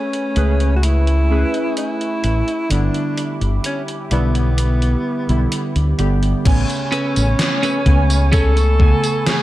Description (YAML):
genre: vaporwave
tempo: 64 BPM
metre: 4/4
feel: straight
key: A major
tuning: A4 = 439 Hz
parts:
  - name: breathy alto saxophone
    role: melody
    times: 0.0-9.4 s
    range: B3 to A4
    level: -22 LUFS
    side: equal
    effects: tape echo
  - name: warbly lo-fi synth keys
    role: accompaniment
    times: 0.0-9.4 s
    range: C#3 to G#5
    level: -22 LUFS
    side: right 1 dB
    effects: lush chorus
  - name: warbly tape-like pad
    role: sustained chords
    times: 0.0-9.4 s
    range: A3 to D6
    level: -30 LUFS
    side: right 1 dB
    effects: chorus, built-in reverb
  - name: gated 80s digital drum machine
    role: drums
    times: 0.1-9.4 s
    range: crash cymbal, hi-hat, snare drum, tambourine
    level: -24 LUFS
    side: equal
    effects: gated reverb, gated reverb snare
  - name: fingered electric bass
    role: bass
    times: 0.4-8.9 s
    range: G1 to D2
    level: -16 LUFS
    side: equal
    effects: tube saturation
  - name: electronic kick drum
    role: drums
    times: 6.5-9.0 s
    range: none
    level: -15 LUFS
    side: equal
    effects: none
  - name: clean electric guitar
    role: riff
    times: 6.9-8.8 s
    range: C#4 to C#5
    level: -23 LUFS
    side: right 1 dB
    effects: analog chorus
room: digital ambience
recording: none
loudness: -15 LUFS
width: side -15 dB against mid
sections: 0.0-6.5 A section; 6.5-9.4 B section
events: none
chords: 0.0 Amaj9; 2.7 G6; 6.5 Amaj9